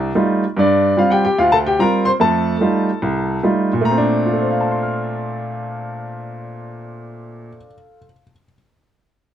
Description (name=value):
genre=solo jazz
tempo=146 BPM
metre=4/4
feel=swing 64% on 8ths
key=Bb major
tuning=A4 = 442 Hz
part: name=clear baby grand piano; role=solo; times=0.0-8.5 s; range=C2 to F6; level=-16 LUFS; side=equal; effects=none
room=moderate club reverb, RT60 0.5 s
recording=dark, warm production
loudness=-15 LUFS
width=side -10 dB against mid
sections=0.0-3.8 A section; 3.8-7.1 B section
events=none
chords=0.0 F9; 0.6 G7sus4; 2.2 F9; 3.8 Bbmaj9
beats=0.15 | 0.56 0.97 1.38 1.79 | 2.20 2.61 3.02 3.43 | 3.84 4.25 4.66 5.07 | 5.48 5.89 6.30 6.71